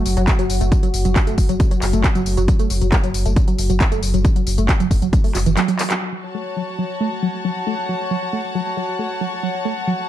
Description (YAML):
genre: driving peak-time techno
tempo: 136 BPM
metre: 4/4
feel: straight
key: F# minor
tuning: A4 = 442 Hz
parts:
  - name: tight sequenced synth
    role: riff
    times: 0.0-9.9 s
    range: E3 to A3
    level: -23 LUFS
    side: right 1 dB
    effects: chorus, phaser, cassette tape, sidechain pumping, ping-pong delay
  - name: analog drone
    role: drone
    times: 0.0-6.1 s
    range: F#3 to F#4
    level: -28 LUFS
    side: equal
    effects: chorus, sidechain pumping
  - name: saturated sub bass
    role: bass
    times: 0.1-5.6 s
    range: F#1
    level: -20 LUFS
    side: equal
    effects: tube saturation, sidechain pumping, low-pass filter
  - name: techno drum kit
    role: drums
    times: 0.1-6.0 s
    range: handclaps, hi-hat, tambourine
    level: -24 LUFS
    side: left 1 dB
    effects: overdrive, sidechain pumping on hats, low-pass filter on hats, studio reverb, sidechain pumping on perc, low-pass filter on perc, low-pass filter on snare
  - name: electronic kick drum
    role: drums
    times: 0.3-5.2 s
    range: none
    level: -17 LUFS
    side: equal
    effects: overdrive, studio reverb
  - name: rich studio string section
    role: texture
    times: 6.0-10.1 s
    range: F#4 to A5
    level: -24 LUFS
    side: left 2 dB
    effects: sidechain pumping
room: light reverb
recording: dark, warm production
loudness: -16 LUFS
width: side -12 dB against mid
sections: 0.0-6.0 A section; 6.0-10.1 B section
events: drum fill 5.8; band accent 5.9; filter sweep on synth arpeggio sound 6.0-10.1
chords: 0.0 F#m